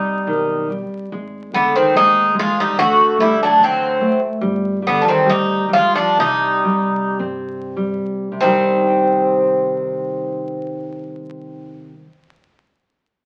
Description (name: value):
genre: fado-style ballad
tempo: 46-74 BPM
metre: 2/4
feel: rubato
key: C harmonic minor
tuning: A4 = 439 Hz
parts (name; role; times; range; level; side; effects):
- Greek bouzouki; melody; 0.0-12.0 s; B3 to F#4; -18 LUFS; equal; none
- picked twelve-string acoustic guitar; second line; 0.0-12.0 s; D3 to A3; -27 LUFS; equal; none
- nylon-string guitar; accompaniment; 0.0-12.1 s; C3 to C4; -25 LUFS; equal; none
- upright bass; bass; 0.3-12.0 s; G1 to G2; -38 LUFS; equal; none
room: wet studio reverb, RT60 0.7 s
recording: very old 78 rpm record, vinyl crackle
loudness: -17 LUFS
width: mono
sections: 0.0-1.1 A section; 1.1-8.4 B section; 8.4-13.3 C section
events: slowing down 4.4-8.4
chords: 0.0 Cm; 1.1 Ab5; 2.8 D5; 4.4 G5; 6.2 Cm